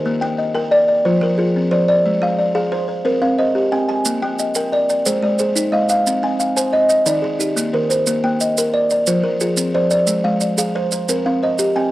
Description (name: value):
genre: southern african traditional, mbira-style interlocking cycle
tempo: 120 BPM (dotted quarters)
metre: 12/8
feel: straight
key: Bb mixolydian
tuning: A4 = 442 Hz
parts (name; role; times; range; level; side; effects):
- buzzing kalimba; arpeggios; 0.0-11.9 s; Eb3 to Ab5; -18 LUFS; left 2 dB; cassette tape
- kalimba; arpeggios; 0.0-11.9 s; Eb3 to Ab5; -18 LUFS; right 2 dB; cassette tape
- maracas; percussion; 4.1-11.7 s; none; -22 LUFS; right 5 dB; none
room: light reverb, small room reverb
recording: home recording on cassette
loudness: -15 LUFS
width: side -16 dB against mid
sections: 0.0-11.9 A section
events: none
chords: 0.0 Bb; 1.0 Fm; 2.0 Ab; 3.0 Cm; 4.1 Bb; 5.1 Ab; 6.1 Cm; 7.1 Eb; 8.1 Bb; 9.1 Fm; 10.1 Ab; 11.1 Cm